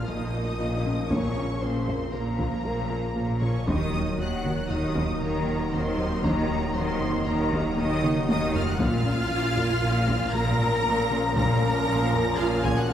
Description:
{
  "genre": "cinematic, hybrid orchestral and electronic film score",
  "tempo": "117 BPM",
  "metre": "5/4",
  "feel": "straight",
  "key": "Bb minor",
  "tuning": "A4 = 440 Hz",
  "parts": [
    { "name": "clear symphonic violin section", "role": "melody", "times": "0.0-12.9 s", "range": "Bb5 to Bb6", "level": "-34 LUFS", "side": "left 2 dB", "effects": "none" },
    { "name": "bright symphonic violin section", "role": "second line", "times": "0.0-12.9 s", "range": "Bb4 to Bb5", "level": "-33 LUFS", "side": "left 2 dB", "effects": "none" },
    { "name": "bright symphonic viola section", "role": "accompaniment", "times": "0.0-12.9 s", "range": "Bb3 to Bb4", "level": "-33 LUFS", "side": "right 1 dB", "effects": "none" },
    { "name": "bright trombone section", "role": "sustained chords", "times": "0.0-12.9 s", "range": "Bb2 to Gb3", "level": "-35 LUFS", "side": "right 3 dB", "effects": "none" },
    { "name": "mellow French horn section", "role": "sustained chords", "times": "0.0-12.9 s", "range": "Db3 to Eb4", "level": "-34 LUFS", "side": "left 1 dB", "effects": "none" },
    { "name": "punchy sub bass", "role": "bass", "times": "0.0-12.9 s", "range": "Eb1 to Bb1", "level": "-37 LUFS", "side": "equal", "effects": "none" },
    { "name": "warm symphonic double bass section", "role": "bass", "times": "0.0-12.9 s", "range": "Bb1 to Eb2", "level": "-31 LUFS", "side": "right 1 dB", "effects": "none" },
    { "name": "impact", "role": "sound effects", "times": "0.0-1.1 s", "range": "none", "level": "barely audible", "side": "none", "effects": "none" },
    { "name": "harp-like synth pluck", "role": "arpeggios", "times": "0.1-12.9 s", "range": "Eb3 to Bb4", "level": "-34 LUFS", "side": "left 3 dB", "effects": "chorus" },
    { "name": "smooth gliding synth bass", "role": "riff", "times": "0.1-12.9 s", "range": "Eb2 to Bb3", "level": "-33 LUFS", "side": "right 1 dB", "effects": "none" },
    { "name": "rich symphonic cello section", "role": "bass", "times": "0.1-12.9 s", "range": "Bb2 to Eb3", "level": "-31 LUFS", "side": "equal", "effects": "none" },
    { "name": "taiko ensemble", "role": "drums", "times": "1.1-12.9 s", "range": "none", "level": "-32 LUFS", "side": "equal", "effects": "none" }
  ],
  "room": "wet scoring stage reverb, RT60 1.7 s",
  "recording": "heard from further back in the room",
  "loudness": "-23 LUFS",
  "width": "side -10 dB against mid",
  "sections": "0.0-12.9 A section",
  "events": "impact 0.0-1.1; drum fill 8.0-8.8",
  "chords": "0.0 Bbm; 3.7 Ebm; 8.8 Bbm",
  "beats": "0.08 0.59 | 1.11 1.62 2.13 2.65 3.16 | 3.67 4.18 4.70 5.21 5.72 | 6.24 6.75 7.26 7.77 8.29 | 8.80 9.31 9.83 10.34 10.85 | 11.36 11.88 12.39 12.90"
}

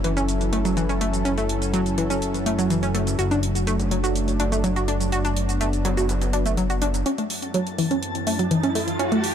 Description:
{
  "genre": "progressive house",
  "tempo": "124 BPM",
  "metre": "4/4",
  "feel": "straight",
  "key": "F# minor",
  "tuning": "A4 = 440 Hz",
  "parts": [
    { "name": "lush unison pad", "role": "sustained chords", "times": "0.0-9.3 s", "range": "F#2 to A4", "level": "-28 LUFS", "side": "equal", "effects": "chorus" },
    { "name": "analog pluck", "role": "arpeggios", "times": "0.0-9.2 s", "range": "E3 to F#4", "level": "-24 LUFS", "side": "equal", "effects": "chorus, tape echo" },
    { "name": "fat analog bass", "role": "bass", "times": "0.0-7.0 s", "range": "F#1", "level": "-25 LUFS", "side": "equal", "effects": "none" },
    { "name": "dusty soul sampler-style drum kit", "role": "drums", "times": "0.0-7.1 s", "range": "hi-hat, snare drum, tambourine", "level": "-41 LUFS", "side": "equal", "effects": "none" },
    { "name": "electronic hi-hat and shaker", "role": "drums", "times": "0.0-9.3 s", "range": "none", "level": "-32 LUFS", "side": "right 1 dB", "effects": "overdrive, high-pass filter on hats, high-pass filter on perc, high-pass filter on room" },
    { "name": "riser", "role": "sound effects", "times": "7.7-9.3 s", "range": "none", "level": "-29 LUFS", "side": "right 1 dB", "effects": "none" },
    { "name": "twinkling granular texture", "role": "texture", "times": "7.4-9.3 s", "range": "A5 to A6", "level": "-34 LUFS", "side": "left 2 dB", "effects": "built-in reverb" }
  ],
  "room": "light reverb, digital ambience",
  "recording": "dark, warm production",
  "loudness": "-20 LUFS",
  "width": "side -8 dB against mid",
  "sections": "0.0-7.1 A section; 7.1-9.3 B section",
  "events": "build-up 7.1-9.3; filter sweep on analog synth pad 7.1-9.3; riser 7.7-9.3",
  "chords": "0.0 F#m7; 3.2 D/F#; 7.1 F#m7",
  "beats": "0.28 0.77 | 1.25 1.74 2.22 2.70 | 3.19 3.67 4.16 4.64 | 5.12 5.61 6.09 6.58 | 7.06 7.54 8.03 8.51 | 8.99"
}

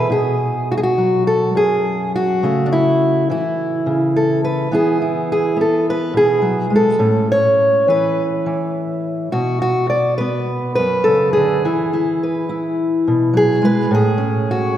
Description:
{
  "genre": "folk, solo fingerstyle acoustic guitar",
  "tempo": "105 BPM",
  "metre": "4/4",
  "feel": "straight",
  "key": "unclear",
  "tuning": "A4 = 440 Hz",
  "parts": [
    { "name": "fingerpicked steel-string acoustic guitar", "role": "solo", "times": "0.0-14.8 s", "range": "F#2 to D5", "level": "-14 LUFS", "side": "equal", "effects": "none" }
  ],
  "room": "wet concert hall reverb, RT60 2.3 s",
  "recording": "recorded in a church or concert hall",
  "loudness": "-14 LUFS",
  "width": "side -11 dB against mid",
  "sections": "0.1-14.8 A section",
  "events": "none",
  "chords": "0.1 B5; 2.4 A/C#; 4.7 E; 7.0 A; 9.3 Bm; 11.6 E; 13.9 A",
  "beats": "| 0.11 0.70 1.28 1.86 | 2.43 3.01 3.58 4.15 | 4.72 5.29 5.86 6.43 | 7.01 7.59 8.17 8.75 | 9.34 9.92 10.50 11.07 | 11.64 12.21 12.78 13.35 | 13.92 14.49"
}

